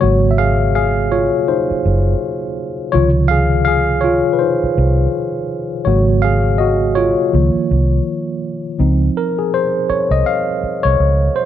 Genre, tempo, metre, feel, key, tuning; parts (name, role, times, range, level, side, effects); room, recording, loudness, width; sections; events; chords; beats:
R&B, neo-soul; 82 BPM; 4/4; swing 59% on 16ths; Db major; A4 = 440 Hz
mellow tine electric piano; accompaniment; 0.0-11.5 s; C3 to F5; -15 LUFS; moving between left 4 dB and right 2 dB; auto-pan
vintage muted fingered electric bass; bass; 0.0-11.3 s; Gb1 to Db2; -15 LUFS; right 1 dB
light reverb, digital ambience; dark, warm production; -13 LUFS; side -10 dB against mid
0.0-8.8 A section; 8.8-11.5 B section
tine electric piano solo 0.0-8.8, 8.8-11.5
0.0 Ab9sus4; 2.9 Dbmaj9; 5.9 Ab9sus4; 7.3 Db6; 8.8 Dbmaj7
| 0.00 0.73 1.46 2.19 | 2.93 3.66 4.39 5.12 | 5.85 6.58 7.32 8.05 | 8.78 9.51 10.24 10.98